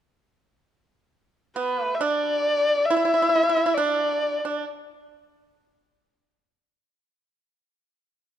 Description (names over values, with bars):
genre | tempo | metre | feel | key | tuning
chinese traditional, Chinese chamber ensemble | 69 BPM | 4/4 | rubato | unclear | A4 = 442 Hz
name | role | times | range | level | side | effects
dark erhu | melody | 1.6-4.6 s | B4 to E5 | -22 LUFS | left 2 dB | none
pipa | second line | 1.6-4.6 s | B3 to E4 | -26 LUFS | right 5 dB | none
room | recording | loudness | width
moderate concert hall reverb, RT60 1.8 s | dark, warm production | -20 LUFS | side -10 dB against mid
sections
0.2-8.4 A section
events
none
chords
none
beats
| 0.23 1.12 2.01 2.89 | 3.77